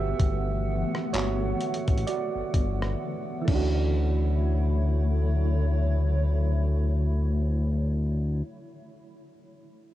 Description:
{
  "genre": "contemporary R&B",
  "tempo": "64 BPM",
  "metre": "4/4",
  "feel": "swing 58% on 16ths",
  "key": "D major",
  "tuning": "A4 = 442 Hz",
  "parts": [
    { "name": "soft electric-piano-like synth keys", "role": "accompaniment", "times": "0.0-9.9 s", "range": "E3 to E5", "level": "-33 LUFS", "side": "right 8 dB", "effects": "chorus" },
    { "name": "granular cloud pad", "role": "sustained chords", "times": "0.0-8.4 s", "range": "D3 to F#5", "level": "-34 LUFS", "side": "left 1 dB", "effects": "built-in reverb" },
    { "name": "smooth gliding synth bass", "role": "bass", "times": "0.0-8.4 s", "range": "G1 to D2", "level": "-24 LUFS", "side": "left 1 dB", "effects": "none" },
    { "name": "dusty soul sampler-style drum kit", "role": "drums", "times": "0.2-3.7 s", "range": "crash cymbal, handclaps, hi-hat, kick drum, rim click", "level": "-27 LUFS", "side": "left 1 dB", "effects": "none" }
  ],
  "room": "digital ambience",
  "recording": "home recording on cassette",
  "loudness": "-24 LUFS",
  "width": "side -14 dB against mid",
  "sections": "0.0-3.9 A section; 3.9-7.7 B section",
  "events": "synth keys solo 0.0-3.9; drums muted 3.0-3.9",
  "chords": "0.0 Gmaj9; 3.5 Dmaj9",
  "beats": "| 0.20 1.13 2.07 3.01 | 3.95 4.88 5.82 6.76"
}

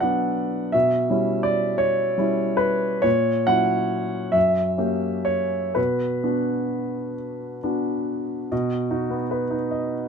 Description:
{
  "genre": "classical, romantic character piece for solo piano",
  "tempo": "41-57 BPM (dotted quarters)",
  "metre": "6/8",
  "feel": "rubato",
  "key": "B minor",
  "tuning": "A4 = 440 Hz",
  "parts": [
    { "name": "warm baby grand piano", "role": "solo", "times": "0.0-10.1 s", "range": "F#2 to F#5", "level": "-21 LUFS", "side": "equal", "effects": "none" }
  ],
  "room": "light reverb",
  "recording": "minimal, uncompressed stereo recording",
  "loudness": "-20 LUFS",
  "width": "side -6 dB against mid",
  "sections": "0.0-8.5 A section; 8.5-10.1 B section",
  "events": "none",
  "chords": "0.0 Bm; 0.7 C#m7b5/B; 3.0 F#7/A#; 4.4 F#7b9; 5.8 Bm; 8.5 B",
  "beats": "| 0.74 1.81 | 3.05 4.35 | 5.77 7.16 | 8.52 9.71"
}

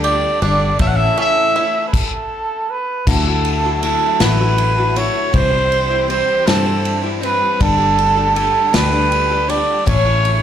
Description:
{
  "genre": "indie folk with a building arrangement",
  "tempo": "53 BPM (dotted quarters)",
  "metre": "6/8",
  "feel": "straight",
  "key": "D major",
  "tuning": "A4 = 442 Hz",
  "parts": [
    { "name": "mellow trumpet", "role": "melody", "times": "0.0-10.4 s", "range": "A4 to F#5", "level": "-16 LUFS", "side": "right 2 dB", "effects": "slapback echo" },
    { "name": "picked acoustic archtop guitar", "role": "accompaniment", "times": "0.0-10.4 s", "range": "A2 to C5", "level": "-23 LUFS", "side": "left 7 dB", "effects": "slapback echo" },
    { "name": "rich chamber string section", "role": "sustained chords", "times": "0.0-10.4 s", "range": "C#3 to G4", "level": "-28 LUFS", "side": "left 1 dB", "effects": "none" },
    { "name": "bluegrass banjo", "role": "arpeggios", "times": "0.0-1.9 s", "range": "A3 to A4", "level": "-24 LUFS", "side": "right 5 dB", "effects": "slapback echo" },
    { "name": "fingered electric bass", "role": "bass", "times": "0.0-10.4 s", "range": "G1 to G2", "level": "-19 LUFS", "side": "left 1 dB", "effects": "none" },
    { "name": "unplugged drum kit", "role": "drums", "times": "0.0-10.4 s", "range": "crash cymbal, kick drum, ride cymbal, snare drum", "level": "-21 LUFS", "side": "equal", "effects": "none" }
  ],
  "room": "studio reverb",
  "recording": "live gig heard through the venue's PA, club ambience",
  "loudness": "-13 LUFS",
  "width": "side -9 dB against mid",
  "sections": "0.0-3.1 A section; 3.1-10.4 B section",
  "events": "stop 1.9-3.1",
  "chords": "0.0 Gsus2; 0.8 A; 3.1 Dadd9; 5.3 C; 7.6 Gsus2; 9.9 A",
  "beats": "| 0.80 1.93 | 3.07 4.20 | 5.34 6.47 | 7.61 8.74 | 9.87"
}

